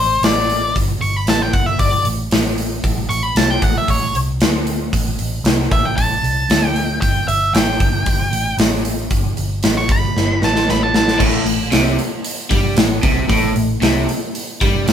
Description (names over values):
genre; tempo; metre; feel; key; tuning
blues rock power trio and southern rock; 115 BPM; 4/4; straight; unclear; A4 = 440 Hz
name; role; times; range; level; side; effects
octave-fuzz lead guitar; melody; 0.0-11.2 s; C5 to C#6; -19 LUFS; equal; distortion
vintage muted fingered electric bass; bass; 0.0-14.9 s; G1 to G2; -21 LUFS; equal; none
big rock drum kit; drums; 0.2-14.9 s; crash cymbal, hi-hat, kick drum, snare drum; -17 LUFS; equal; none
overdriven electric guitar; riff; 11.2-14.9 s; A2 to G3; -18 LUFS; equal; none
room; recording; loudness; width
light reverb; band playing live in one room; -14 LUFS; side -9 dB against mid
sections
0.0-11.2 A section; 11.2-14.9 B section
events
lead electric guitar solo 0.0-11.2; drum fill 10.2-11.2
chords
0.0 G5; 2.8 Amadd11; 7.0 Gsus2; 11.2 Am7